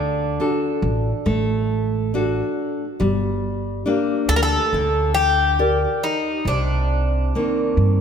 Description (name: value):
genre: fado-style ballad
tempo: 69 BPM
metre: 4/4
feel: rubato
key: G harmonic minor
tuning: A4 = 438 Hz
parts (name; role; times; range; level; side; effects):
- Greek bouzouki; melody; 0.0-8.0 s; D4 to Bb4; -22 LUFS; left 1 dB; none
- nylon-string guitar; accompaniment; 0.0-8.0 s; C3 to D5; -22 LUFS; left 1 dB; none
- upright bass; bass; 0.0-8.0 s; G1 to G2; -22 LUFS; right 1 dB; none
room: moderate concert hall reverb, RT60 2.4 s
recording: none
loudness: -18 LUFS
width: side -7 dB against mid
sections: 0.0-8.0 A section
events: none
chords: 0.0 D; 3.0 Gm; 6.5 Cm7